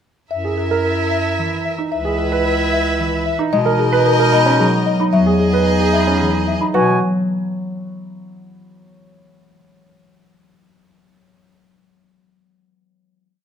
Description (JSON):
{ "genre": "classical, minimalist pattern music", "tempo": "112 BPM", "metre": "3/4", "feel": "straight", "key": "B major", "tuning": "A4 = 440 Hz", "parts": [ { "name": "folk marimba with soft mallets", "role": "melody", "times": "0.3-7.0 s", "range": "G#4 to E5", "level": "-22 LUFS", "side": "left 9 dB", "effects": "none" }, { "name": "clear clarinet", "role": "second line", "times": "0.3-6.6 s", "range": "D#4 to E4", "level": "-23 LUFS", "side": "right 5 dB", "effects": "none" }, { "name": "rich studio violin section", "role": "sustained chords", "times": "0.3-6.6 s", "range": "G#4 to E5", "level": "-22 LUFS", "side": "equal", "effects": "none" }, { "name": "warm bass clarinet", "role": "bass", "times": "0.3-7.0 s", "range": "C#2 to B2", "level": "-21 LUFS", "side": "left 1 dB", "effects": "none" }, { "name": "warm concert grand piano", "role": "arpeggios", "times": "0.4-7.0 s", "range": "C#4 to B4", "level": "-20 LUFS", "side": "right 6 dB", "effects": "none" }, { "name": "concert harp", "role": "accompaniment", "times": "1.4-8.4 s", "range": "E3 to B3", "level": "-20 LUFS", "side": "left 1 dB", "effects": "none" }, { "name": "mellow hollow concert flute", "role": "arpeggios", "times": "5.0-7.0 s", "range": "G#5 to B5", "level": "-24 LUFS", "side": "left 4 dB", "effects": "none" } ], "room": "moderate large studio reverb, RT60 1.5 s", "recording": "close, detailed microphones", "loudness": "-14 LUFS", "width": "side -8 dB against mid", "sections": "0.3-6.7 A section; 6.7-8.3 final chord", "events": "none", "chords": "0.3 F#7; 1.9 C#m7; 3.5 Bmaj7; 5.1 Emaj9; 6.7 B5", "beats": "| 0.31 0.85 1.38 | 1.92 2.46 2.99 | 3.53 4.06 4.60 | 5.13 5.67 6.21 | 6.74 7.28 7.81" }